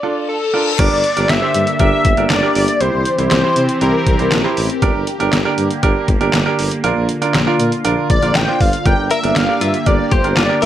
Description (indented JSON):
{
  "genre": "synth-pop",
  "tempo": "119 BPM",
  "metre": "4/4",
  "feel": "straight",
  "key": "G dorian",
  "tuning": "A4 = 440 Hz",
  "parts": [
    { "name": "wide unison lead", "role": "melody", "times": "0.0-4.5, 8.1-10.7 s", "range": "A4 to G5", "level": "-18 LUFS", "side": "left 2 dB", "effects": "tape echo" },
    { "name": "clear concert grand piano", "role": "accompaniment", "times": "0.0-10.7 s", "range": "D4 to C5", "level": "-20 LUFS", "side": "right 5 dB", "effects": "none" },
    { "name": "reverse cymbal", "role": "sound effects", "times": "0.2-0.8 s", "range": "none", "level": "-23 LUFS", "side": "left 8 dB", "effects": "none" },
    { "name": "phased analog pad", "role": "sustained chords", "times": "0.8-10.7 s", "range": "D3 to G4", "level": "-22 LUFS", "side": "equal", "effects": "phaser, chorus" },
    { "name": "mellow tuba", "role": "bass", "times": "0.8-10.7 s", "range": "G1 to C3", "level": "-20 LUFS", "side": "equal", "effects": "none" },
    { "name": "detuned 8-bit digital drum machine", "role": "drums", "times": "0.8-10.7 s", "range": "crash cymbal, handclaps, hi-hat, kick drum, snare drum", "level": "-18 LUFS", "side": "equal", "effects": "none" },
    { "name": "direct-recorded clean electric guitar", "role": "second line", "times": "9.1-10.7 s", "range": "F4 to Bb4", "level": "-21 LUFS", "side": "left 5 dB", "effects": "spring reverb" }
  ],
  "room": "light reverb",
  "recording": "none",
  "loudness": "-13 LUFS",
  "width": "side -11 dB against mid",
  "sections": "0.8-10.7 A section",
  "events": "break 0.0-0.8; reverse cymbal 0.2-0.8",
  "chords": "0.0 Bb; 0.8 Gm; 2.8 C; 4.8 Gm; 6.8 Bb; 8.9 Gm",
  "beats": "0.28 | 0.79 1.29 1.80 2.30 | 2.81 3.31 3.81 4.32 | 4.82 5.33 5.83 6.33 | 6.84 7.34 7.85 8.35 | 8.86 9.36 9.86 10.37"
}